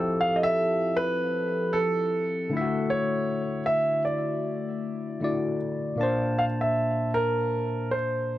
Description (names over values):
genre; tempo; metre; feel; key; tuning
R&B; 78 BPM; 4/4; swing 61% on 16ths; unclear; A4 = 440 Hz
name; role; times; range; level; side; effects
barky tine electric piano; accompaniment; 0.0-8.4 s; Bb2 to A5; -27 LUFS; left 2 dB; phaser
warm grand piano; melody; 0.2-8.4 s; A4 to F5; -26 LUFS; right 1 dB; none
room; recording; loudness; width
light reverb; none; -24 LUFS; side -14 dB against mid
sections
0.0-8.4 A section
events
none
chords
0.0 Fmaj9; 2.5 Dmaj9; 6.0 Bbmaj9